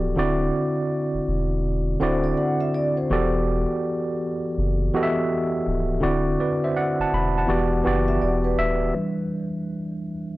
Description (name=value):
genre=hip hop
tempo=82 BPM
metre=4/4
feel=swing 62% on 16ths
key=E minor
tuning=A4 = 440 Hz
part: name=tine electric piano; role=accompaniment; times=0.0-10.4 s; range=D3 to B5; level=-22 LUFS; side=equal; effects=medium stereo tremolo, low-pass filter
part: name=soft dub sub bass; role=bass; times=0.0-8.9 s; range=C#1 to F#1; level=-25 LUFS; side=equal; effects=transformer saturation
part: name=vibraphone with soft mallets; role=second line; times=2.0-3.3, 8.1-8.9 s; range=B4 to F#5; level=-29 LUFS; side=left 2 dB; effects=analog delay
room=light reverb, small room ambience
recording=dry, gritty hardware recording, cassette tape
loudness=-21 LUFS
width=side -18 dB against mid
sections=0.0-8.9 A section; 8.9-10.4 B section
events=tine electric piano solo 8.9-10.4; filter sweep on tine electric piano 8.9-10.4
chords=0.2 D9; 3.1 Em11; 6.0 D9; 7.5 Em9; 8.9 Em7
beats=| 0.17 0.90 1.63 2.37 | 3.10 3.83 4.56 5.29 | 6.02 6.75 7.49 8.22 | 8.95 9.68